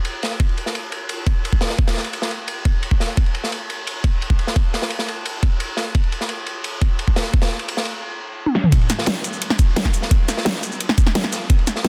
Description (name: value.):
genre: drum and bass.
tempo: 173 BPM.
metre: 4/4.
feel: straight.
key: none.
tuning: none.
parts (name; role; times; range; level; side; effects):
crunchy breakbeat drum kit; drums; 0.0-11.9 s; ride cymbal, snare drum; -27 LUFS; equal; high-pass filter on cymbals, high-pass filter on snare, high-pass filter on room.
dubstep drum kit; drums; 0.1-11.9 s; hi-hat, shaker, snare drum, toms; -23 LUFS; equal; low-pass filter on hats, low-pass filter on toms, low-pass filter on snare, low-pass filter on perc.
electronic kick drum; drums; 0.4-11.6 s; none; -19 LUFS; equal; none.
room: small room ambience.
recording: dense, heavily limited modern master.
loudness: -20 LUFS.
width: mono.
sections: 0.0-8.7 A section; 8.7-11.9 B section.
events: drum fill 8.5; drop 8.7-11.9.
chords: none.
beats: 0.05 | 0.40 0.75 1.09 1.44 | 1.79 2.13 2.48 2.83 | 3.17 3.52 3.87 4.21 | 4.56 4.91 5.25 5.60 | 5.95 6.29 6.64 6.99 | 7.34 7.68 8.03 8.38 | 8.72 9.07 9.42 9.76 | 10.11 10.46 10.80 11.15 | 11.50 11.84.